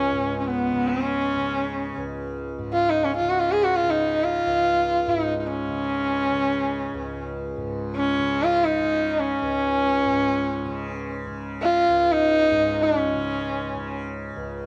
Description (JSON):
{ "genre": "indian classical, Hindustani", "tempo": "free time", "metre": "none", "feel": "none", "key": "unclear", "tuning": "A4 = 440 Hz", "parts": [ { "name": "rich sarangi", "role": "melody", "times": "0.0-14.0 s", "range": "Cb4 to Ab4", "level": "-24 LUFS", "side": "equal", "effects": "none" }, { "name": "tanpura", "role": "drone", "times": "0.0-14.7 s", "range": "Db2 to Db3", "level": "-33 LUFS", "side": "equal", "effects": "none" } ], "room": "moderate small room reverb, RT60 0.5 s", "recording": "dark, warm production", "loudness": "-24 LUFS", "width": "mono", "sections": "0.0-14.7 A section", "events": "none", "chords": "none" }